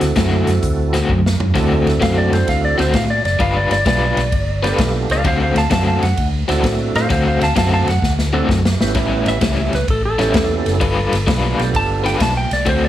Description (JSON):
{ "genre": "electric blues shuffle", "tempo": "130 BPM", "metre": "4/4", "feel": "swing 67% on 8ths", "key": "D mixolydian", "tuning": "A4 = 440 Hz", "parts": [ { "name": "electric guitar through a small old amp", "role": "melody", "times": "0.0-1.1 s", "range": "D5", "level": "-47 LUFS", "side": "right 2 dB", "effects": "none" }, { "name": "percussive tonewheel organ", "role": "accompaniment", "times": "0.0-12.2 s", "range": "B3 to B4", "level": "-22 LUFS", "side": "right 5 dB", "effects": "overdrive, chorus vibrato, slow rotary speaker, plate reverb" }, { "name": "overdriven electric guitar", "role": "riff", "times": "0.0-12.9 s", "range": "A2 to B4", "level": "-19 LUFS", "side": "left 4 dB", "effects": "tremolo" }, { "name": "vintage muted fingered electric bass", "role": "bass", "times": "0.0-12.9 s", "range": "F#1 to A2", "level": "-19 LUFS", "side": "equal", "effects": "none" }, { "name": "swinging big-band drum kit", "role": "drums", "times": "0.0-12.8 s", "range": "crash cymbal, hi-hat, kick drum, ride cymbal, snare drum, toms", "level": "-20 LUFS", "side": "equal", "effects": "none" }, { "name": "clean lap steel guitar", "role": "second line", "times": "2.0-12.9 s", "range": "A4 to A5", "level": "-20 LUFS", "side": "right 1 dB", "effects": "plate reverb" } ], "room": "light reverb", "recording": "studio ambience", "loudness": "-14 LUFS", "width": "side -12 dB against mid", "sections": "0.0-1.6 A section; 1.6-12.9 B section", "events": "drum fill 1.1-1.6, 8.0-9.0; electric slide guitar solo 1.6-12.9", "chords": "0.0 D7; 3.4 G7; 5.2 D7; 9.0 A7; 10.8 G7" }